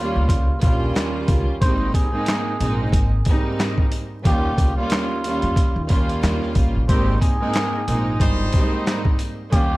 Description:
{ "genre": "hip hop, boom-bap hip-hop", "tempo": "91 BPM", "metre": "4/4", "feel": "swing 57% on 16ths", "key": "Ab major", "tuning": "A4 = 440 Hz", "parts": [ { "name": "trumpet with cup mute", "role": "melody", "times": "0.0-9.8 s", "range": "F4 to C5", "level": "-28 LUFS", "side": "equal", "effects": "tape echo" }, { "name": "warm studio string section", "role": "accompaniment", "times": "0.0-9.8 s", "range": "Eb2 to F4", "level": "-24 LUFS", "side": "right 1 dB", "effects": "cassette tape" }, { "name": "upright bass", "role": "bass", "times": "0.2-9.8 s", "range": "G1 to Eb3", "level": "-22 LUFS", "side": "equal", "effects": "none" }, { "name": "boom bap sampler-style drum kit", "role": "drums", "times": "0.3-9.7 s", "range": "handclaps, hi-hat, kick drum, snare drum", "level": "-20 LUFS", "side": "equal", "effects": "none" }, { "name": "sleigh bells", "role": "percussion", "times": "0.3-9.7 s", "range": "none", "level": "-44 LUFS", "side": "left 6 dB", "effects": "none" }, { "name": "clear horn section", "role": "stabs", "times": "6.9-9.0 s", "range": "Eb3 to C5", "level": "-29 LUFS", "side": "left 1 dB", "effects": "tape echo" } ], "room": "little or no reverb", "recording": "dark, warm production, vinyl crackle", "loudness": "-18 LUFS", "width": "side -19 dB against mid", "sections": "0.0-9.8 A section", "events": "none", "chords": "0.0 Eb9; 1.6 Abmaj9; 4.3 Eb9; 6.9 Abmaj9" }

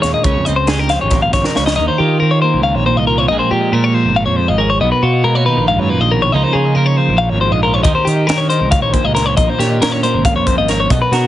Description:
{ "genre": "math rock and midwest emo", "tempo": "276 BPM (eighths)", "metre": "7/8", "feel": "straight", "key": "unclear", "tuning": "A4 = 440 Hz", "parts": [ { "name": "twelve-string electric guitar", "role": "accompaniment", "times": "0.0-11.3 s", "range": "F2 to Eb5", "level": "-18 LUFS", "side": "right 5 dB", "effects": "spring reverb" }, { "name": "clean electric guitar", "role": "arpeggios", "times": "0.0-11.3 s", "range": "Gb4 to F5", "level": "-15 LUFS", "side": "left 4 dB", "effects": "analog delay" }, { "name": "fuzz picked electric bass", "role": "bass", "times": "0.0-11.3 s", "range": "Ab1 to Eb3", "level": "-17 LUFS", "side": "equal", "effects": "overdrive" }, { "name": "crisp fusion drum kit", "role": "drums", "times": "0.0-1.8, 7.8-11.2 s", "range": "hi-hat, kick drum, snare drum", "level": "-18 LUFS", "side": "equal", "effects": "none" } ], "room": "little or no reverb", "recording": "heavily compressed radio sound, multiband compression, nothing above 10.6 kHz", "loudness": "-12 LUFS", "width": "side -13 dB against mid", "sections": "0.0-1.8 A section; 1.8-11.3 B section", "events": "drum fill 1.4-1.8", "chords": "0.2 Dbmaj7; 1.8 Eb13; 3.3 Bbm11; 4.8 Cbmaj9#11; 6.3 Db69; 7.9 Eb13; 9.4 Bbm11" }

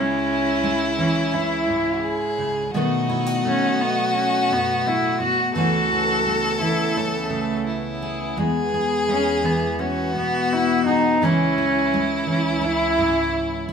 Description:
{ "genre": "acoustic folk-pop ballad", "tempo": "85 BPM", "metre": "4/4", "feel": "straight", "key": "unclear", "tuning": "A4 = 440 Hz", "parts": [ { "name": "warm cello", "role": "melody", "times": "0.0-13.7 s", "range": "A3 to F#4", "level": "-22 LUFS", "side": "equal", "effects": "none" }, { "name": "rich violin", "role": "second line", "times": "0.0-13.7 s", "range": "E4 to A4", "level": "-24 LUFS", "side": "left 2 dB", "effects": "none" }, { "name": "fingerpicked steel-string acoustic guitar", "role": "accompaniment", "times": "0.0-13.7 s", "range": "E2 to G#4", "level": "-24 LUFS", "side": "equal", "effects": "none" }, { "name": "warm studio string section", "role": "sustained chords", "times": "0.0-13.7 s", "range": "C#2 to D#5", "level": "-32 LUFS", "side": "right 1 dB", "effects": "none" } ], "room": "wet studio reverb, RT60 0.8 s", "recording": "minimal, uncompressed stereo recording", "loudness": "-19 LUFS", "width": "side -6 dB against mid", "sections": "0.0-13.7 A section", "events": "none", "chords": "0.0 C#m; 2.7 B7; 5.5 Amaj7/C#; 8.4 E; 11.2 C#m" }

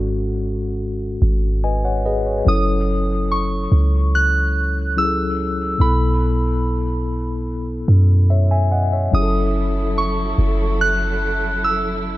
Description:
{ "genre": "R&B", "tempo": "72 BPM", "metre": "4/4", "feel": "straight", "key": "unclear", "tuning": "A4 = 440 Hz", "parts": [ { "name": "mellow tine electric piano", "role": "accompaniment", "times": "0.0-12.2 s", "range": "G#2 to G#5", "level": "-23 LUFS", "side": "left 2 dB", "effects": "medium stereo tremolo, dub echo" }, { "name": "clean 808-style bass", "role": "bass", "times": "0.0-12.2 s", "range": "F#1 to F#2", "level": "-19 LUFS", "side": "equal", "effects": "none" }, { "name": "soft synth bell", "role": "melody", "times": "2.5-12.2 s", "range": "B5 to F#6", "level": "-22 LUFS", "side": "right 1 dB", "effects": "chorus, dub echo" }, { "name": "muted studio string section", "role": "sustained chords", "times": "9.1-12.2 s", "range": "F#3 to A4", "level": "-27 LUFS", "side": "right 2 dB", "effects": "none" } ], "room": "light reverb, digital ambience", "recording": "echo-heavy mix", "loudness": "-16 LUFS", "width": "side -17 dB against mid", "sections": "0.0-2.5 A section; 2.5-12.2 B section", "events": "tine electric piano fill 1.2-2.5", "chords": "0.0 G#7sus4; 2.5 F#m7; 5.8 B7sus4; 9.1 F#m7" }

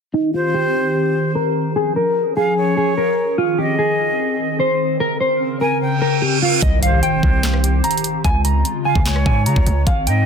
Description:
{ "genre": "hip hop, trap", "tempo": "148 BPM", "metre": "4/4", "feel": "half-time", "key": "C phrygian", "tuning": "A4 = 442 Hz", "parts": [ { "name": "mellow electric guitar", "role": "melody", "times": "0.1-10.3 s", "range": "Eb4 to Bb5", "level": "-19 LUFS", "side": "left 1 dB", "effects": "wide subtle chorus, low-pass filter, digital delay" }, { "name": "hollow soft pad", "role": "sustained chords", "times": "0.1-10.3 s", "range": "Db3 to Bb4", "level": "-22 LUFS", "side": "left 1 dB", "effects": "ensemble chorus, low-pass filter" }, { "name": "breathy jazz flute", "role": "second line", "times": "0.3-10.3 s", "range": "C5 to Ab5", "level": "-24 LUFS", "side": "right 2 dB", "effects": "digital delay" }, { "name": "reverse cymbal and impact", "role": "sound effects", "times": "6.0-8.2 s", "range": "none", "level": "-24 LUFS", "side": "right 4 dB", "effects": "none" }, { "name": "distorted 808-style bass", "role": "bass", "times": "6.6-10.3 s", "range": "Ab1 to Db3", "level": "-17 LUFS", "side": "equal", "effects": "distortion" }, { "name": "trap drum kit", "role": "drums", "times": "6.6-10.2 s", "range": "handclaps, hi-hat, kick drum, rim click, snare drum", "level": "-18 LUFS", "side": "equal", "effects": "none" } ], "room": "light reverb", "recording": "dense, heavily limited modern master", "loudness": "-15 LUFS", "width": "side -6 dB against mid", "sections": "0.1-6.6 A section; 6.6-10.3 B section", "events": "filter sweep 0.1-6.6; reverse cymbal 6.0-6.6; impact 6.6-8.2", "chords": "0.1 Cm; 1.8 Db; 3.4 Ab; 5.0 Bbmadd9; 6.6 Cm; 8.2 Db" }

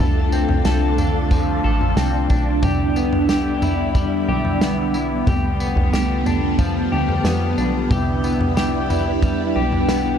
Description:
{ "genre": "dream pop", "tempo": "91 BPM", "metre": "4/4", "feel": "straight", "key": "C major", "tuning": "A4 = 439 Hz", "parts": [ { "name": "ensemble organ-string", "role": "sustained chords", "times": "0.0-10.2 s", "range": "D3 to A4", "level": "-22 LUFS", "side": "right 2 dB", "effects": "phaser, ensemble chorus" }, { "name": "electric guitar at the edge of break-up", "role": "arpeggios", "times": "0.0-10.2 s", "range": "F3 to A4", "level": "-24 LUFS", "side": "left 4 dB", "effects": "analog chorus, digital delay" }, { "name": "plucky analog bass", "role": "bass", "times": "0.0-10.2 s", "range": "A1 to F2", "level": "-22 LUFS", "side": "equal", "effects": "none" }, { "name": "loose indie drum kit", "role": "drums", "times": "0.3-10.0 s", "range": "kick drum, snare drum, tambourine, toms", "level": "-22 LUFS", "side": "equal", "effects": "none" } ], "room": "light reverb, small room ambience", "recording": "dark, warm production", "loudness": "-17 LUFS", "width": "side -8 dB against mid", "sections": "0.0-10.2 A section", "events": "none", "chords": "0.0 Dm/C; 2.6 Cmaj7; 5.3 G7/C; 7.9 Cmaj7" }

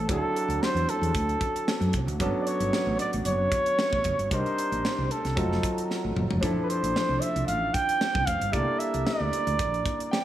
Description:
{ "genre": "polished 1980s jazz-funk pop", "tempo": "114 BPM", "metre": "4/4", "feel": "swing 54% on 16ths", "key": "unclear", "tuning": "A4 = 440 Hz", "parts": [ { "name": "breathy flugelhorn", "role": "melody", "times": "0.0-10.2 s", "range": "A4 to G5", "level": "-28 LUFS", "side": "right 1 dB", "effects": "none" }, { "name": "clear concert grand piano", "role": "accompaniment", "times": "0.0-10.2 s", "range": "F3 to G5", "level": "-31 LUFS", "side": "equal", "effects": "lush chorus" }, { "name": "woody fretless electric bass", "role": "bass", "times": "0.0-9.8 s", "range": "F1 to F#2", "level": "-29 LUFS", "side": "equal", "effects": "analog chorus" }, { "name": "crisp fusion drum kit", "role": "drums", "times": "0.1-10.2 s", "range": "hi-hat, kick drum, snare drum, toms", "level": "-31 LUFS", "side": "equal", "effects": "gated reverb" } ], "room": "light reverb, small room ambience", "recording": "none", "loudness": "-24 LUFS", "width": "side -12 dB against mid", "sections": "0.0-10.2 A section", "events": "drum fill 5.9-6.4; grand piano fill 9.9-10.2", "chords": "0.1 D7; 2.2 Gmaj9#11; 4.3 Cm9; 5.4 F7b9; 6.4 Bbmaj9#11 (rootless); 8.5 C13 (rootless)" }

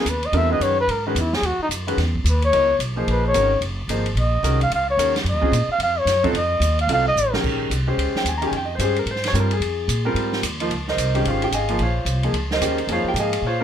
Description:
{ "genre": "modal jazz", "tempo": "220 BPM", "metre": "4/4", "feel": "swing 62% on 8ths", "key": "Bb dorian from 7.4 s", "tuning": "A4 = 437 Hz", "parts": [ { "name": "trumpet with bucket mute", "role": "melody", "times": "0.0-7.3 s", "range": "C#4 to F5", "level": "-20 LUFS", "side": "left 1 dB", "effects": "none" }, { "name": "clear concert grand piano", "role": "accompaniment", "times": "0.0-13.6 s", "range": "C#3 to Bb5", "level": "-23 LUFS", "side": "equal", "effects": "none" }, { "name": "upright bass", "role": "bass", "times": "0.1-13.6 s", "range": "F#1 to A#2", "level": "-23 LUFS", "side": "equal", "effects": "none" }, { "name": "open jazz drum kit", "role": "drums", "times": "0.1-13.4 s", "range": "crash cymbal, hi-hat, kick drum, ride cymbal, snare drum", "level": "-28 LUFS", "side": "right 1 dB", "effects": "none" } ], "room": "moderate small room reverb, RT60 0.6 s", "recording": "none", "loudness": "-18 LUFS", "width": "side -9 dB against mid", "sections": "0.0-7.4 A section; 7.4-13.6 A section", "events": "muted trumpet solo 0.0-7.4; drum fill 7.2", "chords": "0.0 C#m9; 3.1 D#m9; 6.3 F7b9; 7.4 Bbm11" }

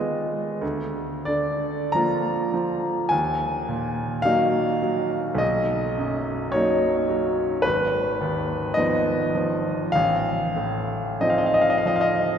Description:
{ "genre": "classical, romantic nocturne for solo piano", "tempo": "43-54 BPM", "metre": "4/4", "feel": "rubato", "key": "unclear", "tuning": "A4 = 440 Hz", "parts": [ { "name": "bright grand piano", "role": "solo", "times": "0.0-12.4 s", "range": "Ab1 to Bb5", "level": "-21 LUFS", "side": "equal", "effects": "none" } ], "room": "wet cathedral reverb, RT60 4.6 s", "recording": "none", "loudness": "-21 LUFS", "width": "side -8 dB against mid", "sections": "0.0-12.4 A section", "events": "none", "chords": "0.0 Fm7b5/Eb; 0.6 Bb/D; 3.1 Ebm; 5.4 Bmaj7; 7.7 Fm7b5/Ab; 9.9 F7/A" }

